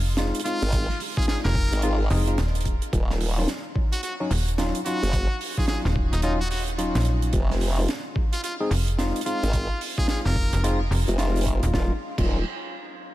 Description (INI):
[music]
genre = glitch hop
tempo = 109 BPM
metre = 4/4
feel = swing 62% on 16ths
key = Eb dorian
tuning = A4 = 439 Hz
[part]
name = slap-like FM bass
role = bass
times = 0.0-11.7 s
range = Eb1 to Bb1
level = -23 LUFS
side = equal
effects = none
[part]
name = tine electric piano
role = stabs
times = 0.2-12.4 s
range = Gb3 to Ab4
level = -30 LUFS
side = left 1 dB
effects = overdrive, sidechain pumping, tape echo
[part]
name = crisp fusion drum kit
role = drums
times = 0.2-12.3 s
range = crash cymbal, hi-hat, snare drum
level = -32 LUFS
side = right 2 dB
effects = none
[part]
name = brilliant trumpet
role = melody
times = 0.5-10.6 s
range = Eb4 to Bb4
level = -33 LUFS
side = equal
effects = tape echo
[part]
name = formant-sweep wobble bass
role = bass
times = 0.6-12.4 s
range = Eb1 to Ab1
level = -24 LUFS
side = equal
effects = chorus
[part]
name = electronic kick drum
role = drums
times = 0.7-12.3 s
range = none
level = -25 LUFS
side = equal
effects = overdrive
[sound]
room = light reverb, studio ambience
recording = none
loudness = -22 LUFS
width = side -16 dB against mid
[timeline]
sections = 0.0-11.7 A section; 11.7-13.1 B section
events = drop 0.0-11.7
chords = 0.0 Fm7; 2.9 Ebm9; 7.3 Fm7; 11.7 Ebm9